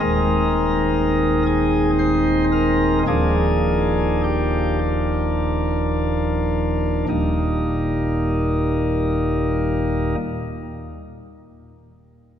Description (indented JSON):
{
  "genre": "classical, chorale-style piece for pipe organ",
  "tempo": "39-63 BPM",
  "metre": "3/4",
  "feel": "rubato",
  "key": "Eb major",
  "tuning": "A4 = 441 Hz",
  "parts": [
    { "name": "pipe organ, sparkling flutes", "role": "solo", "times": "0.0-10.2 s", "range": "Eb1 to C5", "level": "-18 LUFS", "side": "equal", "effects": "none" }
  ],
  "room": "wet church reverb, RT60 3.5 s",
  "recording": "none",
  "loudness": "-18 LUFS",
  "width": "side -9 dB against mid",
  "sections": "0.0-7.1 A section; 7.1-11.7 B section",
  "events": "slowing down 0.0-7.1",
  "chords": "0.0 Ab/Eb; 3.1 Bb7/Eb; 7.1 Eb"
}